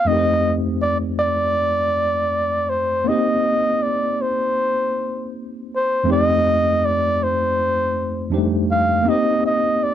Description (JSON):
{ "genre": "soul", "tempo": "80 BPM", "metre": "4/4", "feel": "straight", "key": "unclear", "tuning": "A4 = 438 Hz", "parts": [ { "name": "breathy flugelhorn", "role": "melody", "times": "0.0-9.9 s", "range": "C5 to F5", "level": "-19 LUFS", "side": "equal", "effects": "none" }, { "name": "tine electric piano", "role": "accompaniment", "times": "0.0-9.9 s", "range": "F2 to C5", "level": "-21 LUFS", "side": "left 1 dB", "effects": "overdrive, fast stereo tremolo" } ], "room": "small room ambience", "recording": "dry, close 1970s-style studio recording", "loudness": "-17 LUFS", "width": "side -10 dB against mid", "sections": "0.0-9.9 A section", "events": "none", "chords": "0.1 F13; 3.1 Cm7; 6.1 F13; 9.1 Cm7" }